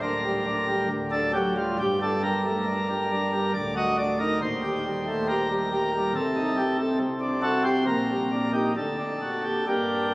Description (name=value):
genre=classical, chorale-style piece for pipe organ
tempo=69 BPM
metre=3/4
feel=rubato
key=G minor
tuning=A4 = 439 Hz
part: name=pipe organ, principal chorus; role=solo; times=0.0-10.1 s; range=D1 to Eb5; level=-23 LUFS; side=equal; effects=none
room=wet cathedral reverb, RT60 4.5 s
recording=recorded on a phone in the room, studio ambience, compression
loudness=-23 LUFS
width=side -22 dB against mid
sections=0.0-10.1 A section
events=none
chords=0.0 Gm/D; 0.9 D; 1.8 Gm; 3.6 D; 4.4 Eb; 6.2 Am7b5/C; 7.0 D7/C; 7.9 Gm/Bb; 8.8 D